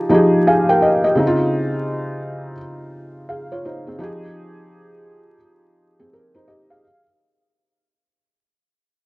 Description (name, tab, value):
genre	hip hop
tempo	85 BPM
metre	4/4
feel	swing 62% on 16ths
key	F minor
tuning	A4 = 440 Hz
part	felt-muted upright piano	solo	0.0-7.0 s	Db3 to Ab5	-16 LUFS	equal	cassette tape
room	light reverb, small room ambience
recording	worn, warbling old tape, cassette tape, vinyl crackle, warbly pitch drift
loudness	-14 LUFS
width	side -22 dB against mid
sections	0.0-6.8 A section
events	fade-out 0.0-6.8; felt piano fill 0.1-1.2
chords	0.0 Fm9; 1.2 Dbmaj9; 4.0 Fm9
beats	0.47 | 1.18 1.88 2.59 3.29 | 4.00 4.70 5.41 6.12